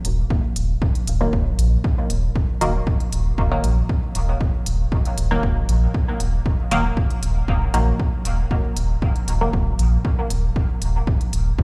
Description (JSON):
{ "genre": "dub techno", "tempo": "117 BPM", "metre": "4/4", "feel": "straight", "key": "Eb minor", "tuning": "A4 = 440 Hz", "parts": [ { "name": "filtered dub chord stab", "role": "stabs", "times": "0.0-10.8 s", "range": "Eb3 to Bb3", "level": "-29 LUFS", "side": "equal", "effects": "chorus, phaser, sidechain pumping, dub echo" }, { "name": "round analog bass", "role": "bass", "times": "0.0-11.6 s", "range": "Eb1 to Eb2", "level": "-22 LUFS", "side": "equal", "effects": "sidechain pumping" }, { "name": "electronic hi-hat", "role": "drums", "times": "0.0-11.4 s", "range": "none", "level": "-33 LUFS", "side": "equal", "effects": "studio reverb" }, { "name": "electronic kick drum", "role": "drums", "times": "0.3-11.6 s", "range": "none", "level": "-25 LUFS", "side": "equal", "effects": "studio reverb" } ], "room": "little or no reverb", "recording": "played on a big sound system in a bare room, large studio reverb", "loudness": "-21 LUFS", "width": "mono", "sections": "0.0-11.6 A section", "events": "none", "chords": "0.0 Ebm" }